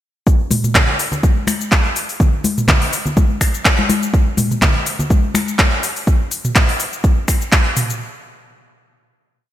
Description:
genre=house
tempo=124 BPM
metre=4/4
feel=swing 54% on 16ths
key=none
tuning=none
part: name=afro-pop drum kit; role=drums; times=0.3-8.0 s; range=cabasa, finger snaps, handclaps, hi-hat, toms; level=-18 LUFS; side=equal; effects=gated reverb
part: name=electronic kick drum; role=drums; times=0.3-7.6 s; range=none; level=-14 LUFS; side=equal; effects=overdrive
part: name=congas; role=percussion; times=0.5-5.5 s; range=none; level=-21 LUFS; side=left 3 dB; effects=none
room=light reverb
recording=bright 1980s-style digital production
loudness=-14 LUFS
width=side -12 dB against mid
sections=0.3-8.0 drop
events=drop 0.3-8.0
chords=none

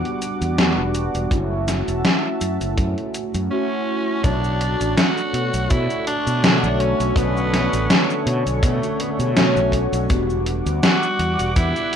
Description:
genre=vaporwave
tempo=82 BPM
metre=4/4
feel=swing 55% on 16ths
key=B minor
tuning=A4 = 441 Hz
part: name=mellow synth brass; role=accompaniment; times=0.0-12.0 s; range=D3 to C#5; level=-23 LUFS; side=equal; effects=wide subtle chorus, tape echo
part: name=lush unison pad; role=sustained chords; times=0.0-12.0 s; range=G3 to D6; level=-31 LUFS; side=equal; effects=chorus
part: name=gated 80s digital drum machine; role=drums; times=0.1-12.0 s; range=cabasa, hi-hat, snare drum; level=-20 LUFS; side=equal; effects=gated reverb, gated reverb snare
part: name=fretless electric bass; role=bass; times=0.4-11.7 s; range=E1 to B2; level=-23 LUFS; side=equal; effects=none
part: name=kick drum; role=drums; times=1.3-11.7 s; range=none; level=-25 LUFS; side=equal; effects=none
part: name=raspy tenor saxophone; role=melody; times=3.5-12.0 s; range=G3 to F#4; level=-25 LUFS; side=equal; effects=tape echo
room=moderate studio reverb, RT60 0.5 s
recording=rough home demo mix, cassette tape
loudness=-17 LUFS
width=side -8 dB against mid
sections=0.0-4.2 A section; 4.2-12.0 B section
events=none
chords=0.0 Em9; 1.3 F#m7; 4.2 Bm9; 10.1 Em9

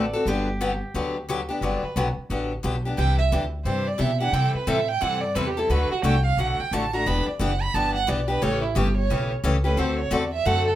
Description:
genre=acoustic string swing (jazz manouche)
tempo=176 BPM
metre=4/4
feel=swing 62% on 8ths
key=G major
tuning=A4 = 440 Hz
part: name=picked steel-string acoustic guitar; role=melody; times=0.0-1.2 s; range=G4 to D5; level=-32 LUFS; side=right 1 dB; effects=none
part: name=picked steel-string acoustic guitar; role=accompaniment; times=0.0-10.7 s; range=C3 to A4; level=-26 LUFS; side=left 2 dB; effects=none
part: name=upright bass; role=bass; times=0.0-10.8 s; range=E1 to C3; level=-25 LUFS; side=equal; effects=none
part: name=warm violin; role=second line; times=1.6-10.8 s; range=E4 to B5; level=-26 LUFS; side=right 5 dB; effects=none
room=wet studio reverb, RT60 0.5 s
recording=band playing live in one room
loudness=-21 LUFS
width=side -13 dB against mid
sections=0.0-1.6 A section; 1.6-10.8 B section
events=violin solo 1.6-10.8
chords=0.3 Gmaj7; 3.0 Cadd9; 4.3 Am7; 5.7 D; 7.1 Em7; 8.4 A7; 9.8 D7

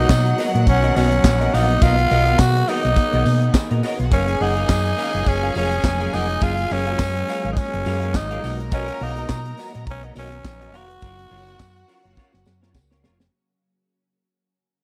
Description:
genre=disco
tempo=104 BPM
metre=4/4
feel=swing 56% on 16ths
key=F# major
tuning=A4 = 440 Hz
part: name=growling tenor saxophone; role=melody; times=0.0-12.8 s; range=C#4 to F#4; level=-25 LUFS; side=equal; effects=slapback echo
part: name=clear studio string section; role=second line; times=0.0-13.0 s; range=F#3 to A#5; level=-32 LUFS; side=equal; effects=none
part: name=semi-hollow electric guitar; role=accompaniment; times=0.0-13.2 s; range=B3 to F#5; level=-30 LUFS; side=equal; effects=ensemble chorus
part: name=shimmering ambient pad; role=sustained chords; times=0.0-13.3 s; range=C#3 to G#4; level=-33 LUFS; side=equal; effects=chorus, built-in reverb, phaser
part: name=hollow-body short-scale fingered electric bass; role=bass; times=0.0-13.3 s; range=E#1 to B2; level=-24 LUFS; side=equal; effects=none
part: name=tight funk drum kit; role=drums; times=0.1-13.3 s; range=handclaps, hi-hat, kick drum, snare drum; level=-21 LUFS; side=equal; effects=none
part: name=tambourine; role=percussion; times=0.1-13.2 s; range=none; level=-44 LUFS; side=equal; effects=none
room=little or no reverb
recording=dry, close 1970s-style studio recording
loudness=-19 LUFS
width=mono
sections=0.0-13.3 A section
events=fade-out 2.3-13.3; drum fill 12.2-13.3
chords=0.0 Bmaj7; 4.1 F#maj9; 8.4 Bmaj7; 11.0 F#maj7

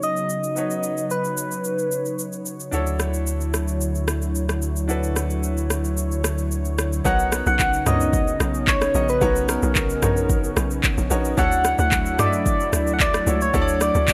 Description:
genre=amapiano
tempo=111 BPM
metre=4/4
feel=straight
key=unclear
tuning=A4 = 441 Hz
part: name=soft struck synth lead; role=melody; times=0.0-2.5, 7.1-14.1 s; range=A#4 to F#5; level=-25 LUFS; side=equal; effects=chorus, delay
part: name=clear baby grand piano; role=accompaniment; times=0.0-14.1 s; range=B3 to E5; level=-32 LUFS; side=equal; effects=none
part: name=warm analog pad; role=sustained chords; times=0.0-14.1 s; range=C#3 to C#5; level=-30 LUFS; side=equal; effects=chorus
part: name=afro-pop drum kit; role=drums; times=0.0-14.1 s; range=handclaps, kick drum, rim click, shaker, toms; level=-26 LUFS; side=equal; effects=overdrive
part: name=punchy sub bass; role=bass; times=2.7-7.0 s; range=D2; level=-26 LUFS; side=equal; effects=none
part: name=tight log drum bass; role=bass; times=7.1-14.1 s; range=A#1 to F#2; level=-27 LUFS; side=equal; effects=none
room=light reverb, digital ambience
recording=none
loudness=-22 LUFS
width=mono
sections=0.0-7.1 A section; 7.1-14.1 B section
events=drop 7.1-14.1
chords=0.0 Bmaj9; 2.7 Dmaj9; 7.1 Bmaj9; 11.4 Dmaj9

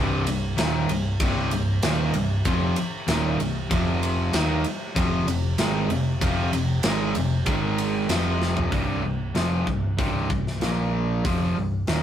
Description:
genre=hard rock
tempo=96 BPM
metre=4/4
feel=straight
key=unclear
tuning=A4 = 440 Hz
part: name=overdriven electric guitar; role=riff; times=0.0-12.0 s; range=C2 to Eb4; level=-27 LUFS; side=left 2 dB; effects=none
part: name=overdriven semi-hollow guitar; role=riff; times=0.0-12.0 s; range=C2 to Eb4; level=-27 LUFS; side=right 4 dB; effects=none
part: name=picked electric bass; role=bass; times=0.0-12.0 s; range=C1 to Eb2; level=-29 LUFS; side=left 1 dB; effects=none
part: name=tight metal drum kit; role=drums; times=0.3-12.0 s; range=hi-hat, kick drum, ride cymbal, snare drum, toms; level=-27 LUFS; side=equal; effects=none
room=moderate studio reverb, RT60 0.5 s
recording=rough rehearsal-room recording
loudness=-21 LUFS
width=side -10 dB against mid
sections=0.0-8.7 A section; 8.7-12.0 B section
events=drum fill 8.4-8.7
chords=0.0 C5; 3.7 F5; 7.5 Ab5; 8.1 F5; 8.7 C5; 10.6 Bb5; 11.2 C5

